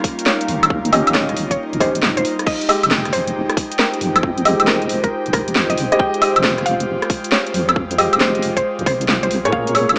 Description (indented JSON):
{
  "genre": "UK garage, two-step garage",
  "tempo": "136 BPM",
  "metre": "4/4",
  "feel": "swing 66% on 16ths",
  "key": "F minor",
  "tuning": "A4 = 440 Hz",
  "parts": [
    { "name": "airy breathy pad", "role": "sustained chords", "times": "0.0-10.0 s", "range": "G3 to G4", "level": "-28 LUFS", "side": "equal", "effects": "chorus, sidechain pumping" },
    { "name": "electronic kick drum", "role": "drums", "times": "0.0-9.6 s", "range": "none", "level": "-24 LUFS", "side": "equal", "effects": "none" },
    { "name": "garage drum kit", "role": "drums", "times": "0.0-10.0 s", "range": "crash cymbal, hi-hat, rim click, snare drum, woodblock", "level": "-20 LUFS", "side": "equal", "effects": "none" },
    { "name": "warbly tape-like pad", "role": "texture", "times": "0.0-10.0 s", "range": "Eb4 to C6", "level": "-29 LUFS", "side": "equal", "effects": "chorus, built-in reverb, sidechain pumping" },
    { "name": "mallet-like synth pluck", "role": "melody", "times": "0.3-9.7 s", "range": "Bb4 to G5", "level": "-26 LUFS", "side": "equal", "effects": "chorus, cassette tape, diffuse ambient delay" },
    { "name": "deep soft wobble bass", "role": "bass", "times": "0.5-10.0 s", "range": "Eb1 to Bb2", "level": "-26 LUFS", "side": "equal", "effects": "chorus, tube saturation" },
    { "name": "dark concert grand piano", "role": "stabs", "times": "0.9-9.9 s", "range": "Ab3 to Eb5", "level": "-23 LUFS", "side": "equal", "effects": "lush chorus" }
  ],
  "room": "wet plate reverb, RT60 1.7 s",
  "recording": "dreamy mix soaked in reverb, vinyl crackle, small speaker sound",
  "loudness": "-17 LUFS",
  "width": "mono",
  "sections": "0.0-10.0 A section",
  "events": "none",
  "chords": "0.0 Eb7; 2.5 Fm9; 9.3 Bbm7"
}